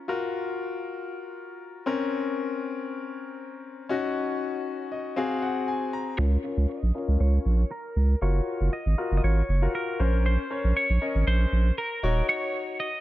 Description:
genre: dance-pop.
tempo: 118 BPM.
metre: 4/4.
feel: straight.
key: Db major.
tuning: A4 = 440 Hz.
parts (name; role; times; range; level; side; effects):
bright concert grand piano; accompaniment; 0.0-12.9 s; C4 to Bb5; -29 LUFS; left 4 dB; low-pass filter.
twelve-string electric guitar; melody; 6.2-13.0 s; Bb4 to Eb5; -31 LUFS; right 1 dB; low-pass filter, digital delay.
saturated sub bass; bass; 6.2-12.2 s; Eb1 to Db2; -22 LUFS; right 1 dB; none.
room: light reverb, small room ambience.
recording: dark, warm production.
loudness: -24 LUFS.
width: side -15 dB against mid.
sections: 0.0-6.2 A section; 6.2-13.0 B section.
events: grand piano fill 4.7-6.2; build-up 6.2-13.0; filter sweep 6.2-13.0; break 12.3-13.0.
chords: 0.1 Gbmaj7; 1.9 Bbmadd9; 3.9 Ebm7; 5.2 Ab7; 6.2 Db6; 8.2 Gbmaj7; 10.0 Bbmadd9; 12.0 Ebm7.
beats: | 0.09 0.59 1.10 1.61 | 2.12 2.63 3.14 3.65 | 4.15 4.66 5.17 5.68 | 6.19 6.70 7.21 7.71 | 8.22 8.73 9.24 9.75 | 10.26 10.76 11.27 11.78 | 12.29 12.80.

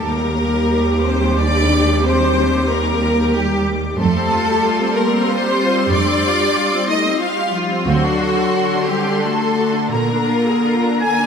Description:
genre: cinematic, emotional film score for orchestra.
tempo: 82-95 BPM.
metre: 3/4.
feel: rubato.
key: unclear.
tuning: A4 = 443 Hz.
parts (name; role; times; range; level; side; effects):
clear symphonic violin section; melody; 0.0-11.3 s; Bb5 to D6; -27 LUFS; left 2 dB; none.
clear symphonic violin section; second line; 0.0-11.3 s; F4 to Ab5; -20 LUFS; equal; none.
clear symphonic viola section; accompaniment; 0.0-11.3 s; D3 to A4; -22 LUFS; right 1 dB; none.
dark French horn section; sustained chords; 0.0-11.3 s; F3 to F4; -20 LUFS; left 2 dB; none.
rich symphonic cello section; bass; 0.0-10.5 s; D2 to Bb2; -20 LUFS; right 2 dB; none.
clear oboe; second line; 11.0-11.3 s; Ab5; -19 LUFS; right 2 dB; none.
mellow large flute ensemble; second line; 11.0-11.3 s; Ab5; -21 LUFS; left 10 dB; none.
room: wet scoring stage reverb, RT60 2.1 s.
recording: none.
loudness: -14 LUFS.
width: side -6 dB against mid.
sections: 0.0-11.3 A section.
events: none.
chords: 0.1 Ebmaj7; 4.0 Fadd9; 7.9 D7; 9.9 Bb7.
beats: | 0.06 0.72 1.38 | 2.04 2.69 3.34 | 3.98 4.64 5.28 | 5.92 6.56 7.21 | 7.87 8.54 9.21 | 9.92 10.64.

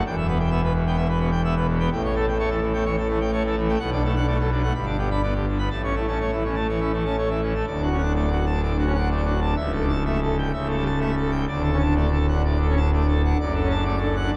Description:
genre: classical, organ toccata.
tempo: 126 BPM.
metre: 4/4.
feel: straight.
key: D major.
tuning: A4 = 441 Hz.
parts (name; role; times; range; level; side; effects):
pipe organ, full organ; solo; 0.0-14.4 s; C#1 to B5; -23 LUFS; equal; none.
room: wet cathedral reverb, RT60 4.0 s.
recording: dark, warm production.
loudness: -23 LUFS.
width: mono.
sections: 0.0-7.7 A section; 7.7-14.4 B section.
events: none.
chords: 0.0 Em; 1.9 A7; 3.8 Bm7; 4.7 G; 5.7 A; 7.7 D; 9.6 A7/C#; 11.5 D; 13.4 D/F#.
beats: | 0.03 0.50 0.97 1.43 | 1.91 2.38 2.85 3.32 | 3.79 4.27 4.74 5.22 | 5.71 6.20 6.69 7.18 | 7.67 8.15 8.62 9.10 | 9.58 10.05 10.53 11.01 | 11.48 11.96 12.43 12.91 | 13.38 13.85 14.32.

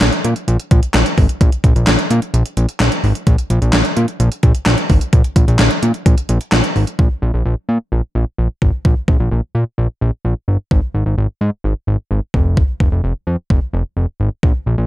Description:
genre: synth-pop.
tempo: 129 BPM.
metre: 4/4.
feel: straight.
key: unclear.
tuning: A4 = 440 Hz.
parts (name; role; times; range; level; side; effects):
fat analog bass; bass; 0.0-14.9 s; F1 to Bb2; -14 LUFS; equal; none.
gated 80s digital drum machine; drums; 0.0-14.5 s; handclaps, hi-hat, kick drum, snare drum; -14 LUFS; equal; gated reverb, gated reverb snare, overdrive.
room: little or no reverb.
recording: dark, warm production.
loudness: -13 LUFS.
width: side -14 dB against mid.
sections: 0.0-7.0 A section; 7.0-14.9 B section.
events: none.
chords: none.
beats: 0.01 0.48 0.94 | 1.41 1.87 2.34 2.80 | 3.27 3.73 4.20 4.66 | 5.13 5.59 6.06 6.52 | 6.99 7.46 7.92 8.38 | 8.85 9.31 9.78 10.24 | 10.71 11.18 11.64 12.11 | 12.57 13.04 13.50 13.97 | 14.43.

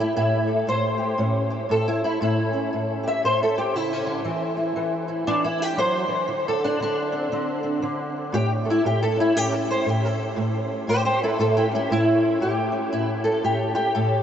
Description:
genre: acoustic country blues, solo or duo.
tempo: 118 BPM.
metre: 4/4.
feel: swing 61% on 8ths.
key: A mixolydian.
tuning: A4 = 440 Hz.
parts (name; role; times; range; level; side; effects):
fingerpicked old ladder-braced acoustic guitar; solo; 0.0-14.2 s; A2 to E5; -21 LUFS; equal; ensemble chorus, tape echo.
room: wet huge ambient reverb, RT60 9.3 s.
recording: dreamy mix soaked in reverb, nothing above 7.9 kHz.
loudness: -21 LUFS.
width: side -9 dB against mid.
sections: 0.0-12.4 A section; 12.4-14.2 B section.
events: steel-string acoustic guitar solo 0.0-12.4.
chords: 0.0 A7; 4.2 E7sus2; 6.3 Amadd11/D (rootless); 8.3 A7.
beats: | 0.16 0.67 1.19 1.70 | 2.21 2.72 3.23 3.74 | 4.25 4.76 5.27 5.78 | 6.29 6.80 7.31 7.82 | 8.33 8.84 9.35 9.86 | 10.37 10.88 11.39 11.90 | 12.41 12.93 13.44 13.95.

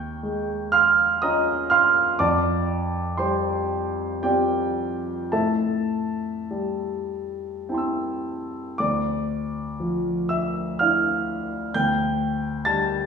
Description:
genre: classical, impressionist solo piano.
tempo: 50-68 BPM.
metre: 3/4.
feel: rubato.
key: D minor.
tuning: A4 = 440 Hz.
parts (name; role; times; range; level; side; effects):
clear grand piano; solo; 0.0-13.1 s; D2 to A6; -21 LUFS; right 1 dB; none.
room: wet recital hall reverb, RT60 1.4 s.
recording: heard from further back in the room, studio reverb.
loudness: -21 LUFS.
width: side -6 dB against mid.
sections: 0.0-8.8 A section; 8.8-13.1 B section.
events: none.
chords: 0.0 Eb9sus4; 2.2 Fadd9; 5.3 Am7; 8.8 Dmadd9; 11.7 Dsus4.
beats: 0.23 1.22 | 2.19 3.18 4.23 | 5.31 6.50 7.68 | 8.79 9.80 10.78 | 11.73 12.66.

